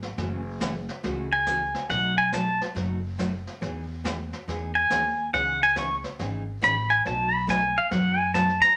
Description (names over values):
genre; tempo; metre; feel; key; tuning
country, western swing; 140 BPM; 4/4; swing 65% on 8ths; unclear; A4 = 437 Hz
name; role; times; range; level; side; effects
upright bass; bass; 0.0-8.6 s; F#1 to F#2; -35 LUFS; equal; none
jazz brush drum kit; drums; 0.0-8.8 s; brushed snare drum, hi-hat, kick drum, snare drum; -38 LUFS; equal; none
picked steel-string acoustic guitar; accompaniment; 0.2-8.5 s; B2 to G#4; -34 LUFS; equal; none
pedal steel guitar; melody; 1.3-8.8 s; F5 to C#6; -24 LUFS; equal; none
room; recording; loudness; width
moderate studio reverb, RT60 0.6 s; none; -26 LUFS; mono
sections
0.0-8.8 A section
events
pedal steel guitar solo 0.0-8.8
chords
0.2 F#m7; 1.9 B7; 3.6 Emaj7; 5.3 C#madd9; 7.1 B7